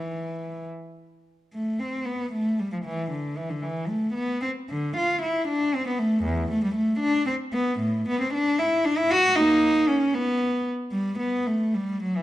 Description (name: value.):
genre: classical, baroque-style suite movement for unaccompanied cello.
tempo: 77 BPM (dotted quarters).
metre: 6/8.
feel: uneven beats, rubato.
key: A minor.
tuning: A4 = 441 Hz.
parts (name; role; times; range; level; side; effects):
warm cello; solo; 0.0-12.2 s; E2 to F#4; -23 LUFS; equal; none.
room: moderate recital hall reverb, RT60 1.5 s.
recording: dark, warm production.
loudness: -22 LUFS.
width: side -14 dB against mid.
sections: 0.0-1.5 A section; 1.5-12.2 A section.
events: none.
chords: none.